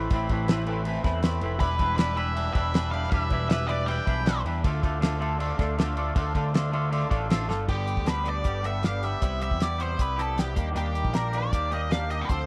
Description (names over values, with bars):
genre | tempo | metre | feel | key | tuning
indie rock | 158 BPM | 4/4 | straight | D dorian | A4 = 440 Hz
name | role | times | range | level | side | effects
twangy electric guitar | riff | 0.0-12.5 s | G2 to B4 | -32 LUFS | equal | double-tracked
overdriven picked electric bass | bass | 0.0-12.5 s | E1 to E2 | -31 LUFS | equal | none
cloth-damped thuddy drum kit | drums | 0.1-12.4 s | crash cymbal, hi-hat, kick drum, snare drum | -30 LUFS | equal | none
octave-fuzz lead guitar | melody | 1.6-4.4, 7.7-12.5 s | G4 to G5 | -33 LUFS | equal | distortion
room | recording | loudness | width
little or no reverb | dry, close 1970s-style studio recording | -26 LUFS | mono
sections
0.0-7.7 A section; 7.7-12.5 B section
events
drum fill 7.5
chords
0.0 Amadd9; 1.6 Em7; 4.6 Dm; 7.7 G; 9.2 Cmaj7; 10.6 Ebmaj7